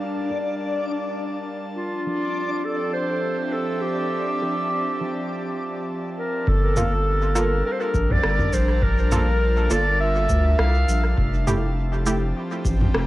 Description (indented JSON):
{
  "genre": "ambient dub",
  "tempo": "102 BPM",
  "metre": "4/4",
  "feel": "swing 54% on 16ths",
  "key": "G dorian",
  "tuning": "A4 = 441 Hz",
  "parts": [
    { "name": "airy breathy pad", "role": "sustained chords", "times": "0.0-13.1 s", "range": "F3 to A5", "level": "-30 LUFS", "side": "equal", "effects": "chorus, cassette tape" },
    { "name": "backwards swelling texture", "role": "texture", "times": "0.0-6.5 s", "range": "D4 to D5", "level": "-30 LUFS", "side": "left 2 dB", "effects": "built-in reverb, cassette tape" },
    { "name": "filtered dub chord stab", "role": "stabs", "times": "0.3-12.3 s", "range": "G2 to A4", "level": "-29 LUFS", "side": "right 2 dB", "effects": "chorus, cassette tape, dub echo" },
    { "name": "warm clarinet", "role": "melody", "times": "1.8-11.0 s", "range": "F4 to F5", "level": "-25 LUFS", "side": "equal", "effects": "cassette tape, dub echo" },
    { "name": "round analog bass", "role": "bass", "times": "6.5-13.1 s", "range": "F1 to D2", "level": "-21 LUFS", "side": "equal", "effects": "none" },
    { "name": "electronic kick drum", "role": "drums", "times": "6.5-12.8 s", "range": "none", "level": "-25 LUFS", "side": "equal", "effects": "cassette tape" },
    { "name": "organic electronic drum kit", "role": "drums", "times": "6.8-13.1 s", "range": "cabasa, rim click, toms", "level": "-27 LUFS", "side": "equal", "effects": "cassette tape, dub echo" }
  ],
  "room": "moderate spring reverb, RT60 2.0 s, digital ambience",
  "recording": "home recording on cassette",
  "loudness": "-20 LUFS",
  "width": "side -16 dB against mid",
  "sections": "0.0-6.5 A section; 6.5-13.1 B section",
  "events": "none",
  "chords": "0.0 Gm7; 1.8 Fmaj9; 6.5 Gm7; 11.2 Fmaj9",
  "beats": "0.00 0.59 1.18 | 1.77 2.35 2.94 3.53 | 4.12 4.71 5.30 5.88 | 6.47 7.06 7.65 8.24 | 8.82 9.41 10.00 10.59 | 11.18 11.77 12.36 12.94"
}